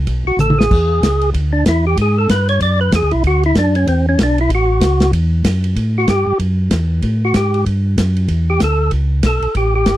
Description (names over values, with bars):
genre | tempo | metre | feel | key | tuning
soul jazz organ trio | 190 BPM | 4/4 | swing 61% on 8ths | A mixolydian | A4 = 440 Hz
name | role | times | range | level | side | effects
mellow tonewheel organ | bass | 0.0-10.0 s | G1 to A2 | -15 LUFS | equal | slow rotary speaker
warm soul drum kit | drums | 0.1-10.0 s | crash cymbal, hi-hat, kick drum, ride cymbal, snare drum, toms | -19 LUFS | equal | none
percussive tonewheel organ | melody | 0.3-10.0 s | C4 to D5 | -16 LUFS | equal | slow rotary speaker, overdrive
room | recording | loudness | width
light reverb | dry, close 1970s-style studio recording | -12 LUFS | side -14 dB against mid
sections
0.0-5.8 A section; 5.8-10.0 A section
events
tonewheel organ solo 0.0-5.8, 5.8-10.0; drum fill 0.4-0.7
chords
0.0 Asus2; 0.7 E9; 3.2 Dadd9; 4.5 A; 5.1 Esus2; 5.8 A7